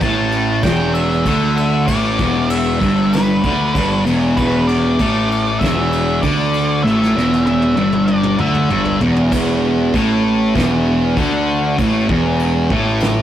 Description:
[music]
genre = stoner and doom metal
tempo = 97 BPM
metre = 4/4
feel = straight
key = E minor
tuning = A4 = 439 Hz
[part]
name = octave-fuzz lead guitar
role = melody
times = 0.0-9.0 s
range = B4 to A5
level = -22 LUFS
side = equal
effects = distortion
[part]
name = thick fuzz guitar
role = riff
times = 0.0-13.2 s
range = E2 to D3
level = -15 LUFS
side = equal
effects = distortion
[part]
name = fuzz picked electric bass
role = bass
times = 0.0-13.2 s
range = E1 to D2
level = -20 LUFS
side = equal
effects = overdrive
[part]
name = soft brush drum kit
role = drums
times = 0.0-13.2 s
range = crash cymbal, kick drum, ride cymbal, snare drum, toms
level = -24 LUFS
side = equal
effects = none
[sound]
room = moderate studio reverb, RT60 0.5 s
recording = rough rehearsal-room recording, warm saturation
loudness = -13 LUFS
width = side -11 dB against mid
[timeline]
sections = 0.0-9.3 A section; 9.3-13.2 B section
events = drum fill 6.8-9.3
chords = 0.0 Em; 9.3 N.C.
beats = 0.02 0.64 1.26 | 1.88 2.50 3.12 3.74 | 4.37 4.99 5.61 6.22 | 6.84 7.46 8.08 8.70 | 9.32 9.93 10.55 11.17 | 11.78 12.40 13.01

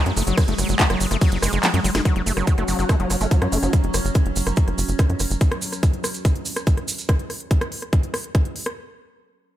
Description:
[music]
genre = psychedelic trance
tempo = 143 BPM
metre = 4/4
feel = straight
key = F# minor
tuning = A4 = 440 Hz
[part]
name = evolving wavetable pad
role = sustained chords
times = 0.0-5.5 s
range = F#3 to C#4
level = -29 LUFS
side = right 1 dB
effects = chorus, built-in reverb, phaser, sidechain pumping
[part]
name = overdriven acid bass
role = riff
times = 0.0-3.7 s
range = F#3 to A3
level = -26 LUFS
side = moving between left 4 dB and right 3 dB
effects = distortion, auto-pan, sidechain pumping, digital delay
[part]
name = tight sequencer bass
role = bass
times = 0.1-5.4 s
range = F#1 to F#2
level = -23 LUFS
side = equal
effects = none
[part]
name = techno drum kit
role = drums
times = 0.1-8.7 s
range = handclaps, hi-hat, ride cymbal, rim click, snare drum, toms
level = -26 LUFS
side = equal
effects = overdrive
[part]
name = tube shaker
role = percussion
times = 0.2-7.1 s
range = none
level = -29 LUFS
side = right 4 dB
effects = none
[part]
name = electronic kick drum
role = drums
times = 0.4-8.4 s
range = none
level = -20 LUFS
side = equal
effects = none
[part]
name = airy breathy pad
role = texture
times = 2.2-3.7 s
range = C#4 to F#5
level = -33 LUFS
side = left 2 dB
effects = chorus, phaser, sidechain pumping
[sound]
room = digital ambience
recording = none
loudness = -18 LUFS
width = side -13 dB against mid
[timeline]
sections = 0.0-2.1 A section; 2.1-8.8 B section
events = drop 0.0-2.1; kick drops out 1.6-2.1; drum fill 1.6-2.1; fade-out on analog synth pad 2.1-3.7; filter sweep on analog synth bass 2.1-5.4; filter sweep on acid bass 2.1-3.7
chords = 0.0 F#5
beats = | 0.38 0.80 1.22 1.63 | 2.05 2.47 2.89 3.31 | 3.73 4.15 4.57 4.99 | 5.41 5.83 6.25 6.67 | 7.09 7.51 7.93 8.35

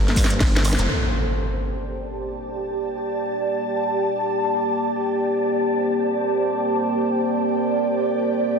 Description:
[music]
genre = bass house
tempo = free time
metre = none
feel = none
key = G minor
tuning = A4 = 440 Hz
[part]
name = deep dark ambient pad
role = sustained chords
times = 0.0-8.6 s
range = Bb3 to D5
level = -24 LUFS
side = equal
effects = chorus, built-in reverb, sidechain pumping
[part]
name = pulsing pluck wobble bass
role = bass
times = 0.0-0.9 s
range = F1 to G2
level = -22 LUFS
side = equal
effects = chorus, tube saturation, sidechain pumping
[part]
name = garage drum kit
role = drums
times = 0.1-0.9 s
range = hi-hat, ride cymbal, snare drum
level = -25 LUFS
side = equal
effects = studio reverb
[part]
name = electronic kick drum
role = drums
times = 0.2-0.5 s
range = none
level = -19 LUFS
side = equal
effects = studio reverb
[part]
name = shekere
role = percussion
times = 0.2-0.9 s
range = none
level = -33 LUFS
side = right 3 dB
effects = none
[part]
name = impact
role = sound effects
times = 0.9-2.8 s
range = none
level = -26 LUFS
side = equal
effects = none
[part]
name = ethereal airy pad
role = texture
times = 1.9-8.6 s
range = G4 to A5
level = -23 LUFS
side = right 2 dB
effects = ensemble chorus, built-in reverb, phaser, sidechain pumping
[sound]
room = wet lush hall reverb, RT60 1.9 s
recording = dense, heavily limited modern master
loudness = -20 LUFS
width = side -6 dB against mid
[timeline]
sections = 0.9-8.6 A section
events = drum fill 0.0-0.9; band accent 0.7; impact 0.9-2.8; filter sweep on ambient pad 0.9-8.6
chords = 0.0 Gm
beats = free time

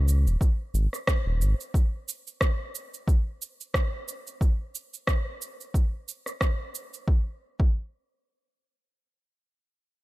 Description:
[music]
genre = sunset chillout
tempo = 90 BPM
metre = 4/4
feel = swing 56% on 16ths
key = unclear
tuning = A4 = 440 Hz
[part]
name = round analog bass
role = bass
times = 0.0-1.5 s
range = Eb1 to Db2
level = -21 LUFS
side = equal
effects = none
[part]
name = electronic cabasa and rim click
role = drums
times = 0.1-7.0 s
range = none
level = -31 LUFS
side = right 1 dB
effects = none
[part]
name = electronic kick drum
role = drums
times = 0.4-7.8 s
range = none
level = -23 LUFS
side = equal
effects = none
[sound]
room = little or no reverb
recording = none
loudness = -25 LUFS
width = side -19 dB against mid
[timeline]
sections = 0.0-7.1 A section; 7.1-9.7 B section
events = none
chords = none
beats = 0.41 1.07 | 1.74 2.41 3.08 3.74 | 4.41 5.08 5.74 6.41 | 7.08 7.74

